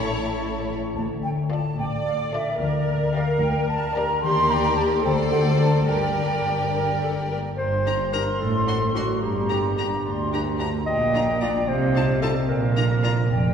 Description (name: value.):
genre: cinematic, playful, whimsical film cue.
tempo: 73 BPM (dotted quarters).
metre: 6/8.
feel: straight.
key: G minor from 4.2 s.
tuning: A4 = 445 Hz.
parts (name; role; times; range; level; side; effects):
rich chamber violin section; melody; 0.0-13.1 s; C#5 to C6; -33 LUFS; left 4 dB; none.
hollow flute section; second line; 0.0-13.5 s; D5 to C6; -28 LUFS; right 1 dB; none.
rich chamber violin section; second line; 0.0-13.1 s; E4 to C5; -33 LUFS; left 1 dB; none.
warm symphonic viola section; accompaniment; 0.0-13.1 s; D4 to D5; -29 LUFS; equal; none.
concert harp; arpeggios; 0.0-13.5 s; G2 to D5; -28 LUFS; left 3 dB; none.
rich chamber cello section; bass; 0.0-13.5 s; D2 to C3; -28 LUFS; right 2 dB; none.
rich chamber double bass section; bass; 0.0-13.5 s; F1 to Eb2; -29 LUFS; right 2 dB; none.
clear clarinet; second line; 7.6-13.5 s; F#4 to Eb5; -25 LUFS; equal; none.
room: wet cathedral reverb, RT60 4.2 s.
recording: recorded in a church or concert hall.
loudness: -20 LUFS.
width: side -7 dB against mid.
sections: 0.0-7.6 A section; 7.6-13.5 B section.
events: none.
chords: 0.0 A; 1.0 Dm; 2.6 Gm/D; 4.2 Ebmaj7; 5.0 D5; 5.9 Gm; 8.4 D7/A; 9.2 Gm; 10.9 Bb; 11.7 F7/C; 12.5 Bb.